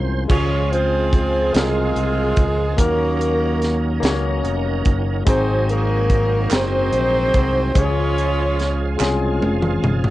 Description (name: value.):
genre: slow gospel.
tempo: 48 BPM (dotted quarters).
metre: 6/8.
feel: straight.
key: Db major.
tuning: A4 = 444 Hz.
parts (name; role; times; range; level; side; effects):
barky tine electric piano; accompaniment; 0.0-10.1 s; Ab2 to Db5; -25 LUFS; left 6 dB; wide subtle chorus, cassette tape.
bright tonewheel organ; sustained chords; 0.0-10.1 s; Fb3 to C5; -28 LUFS; right 7 dB; fast rotary speaker, overdrive, chorus vibrato, cassette tape.
fingered electric bass; bass; 0.0-10.1 s; F1 to Eb2; -22 LUFS; equal; none.
breathy tenor saxophone; melody; 0.3-9.0 s; Ab3 to Db4; -23 LUFS; right 2 dB; none.
warm saxophone section; melody; 0.3-9.0 s; C4 to Db5; -23 LUFS; left 1 dB; none.
crisp fusion drum kit; drums; 0.3-10.1 s; crash cymbal, hi-hat, kick drum, snare drum, toms; -20 LUFS; equal; cassette tape.
group handclap; percussion; 6.5-9.4 s; none; -27 LUFS; right 8 dB; none.
room: light reverb.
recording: home recording on cassette, nothing above 10.4 kHz.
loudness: -16 LUFS.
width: side -16 dB against mid.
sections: 0.3-10.1 A section.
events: drum fill 9.0-10.1.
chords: 0.3 Dbmaj7; 2.8 Ebm7; 5.3 Ab7; 7.8 Dbmaj7.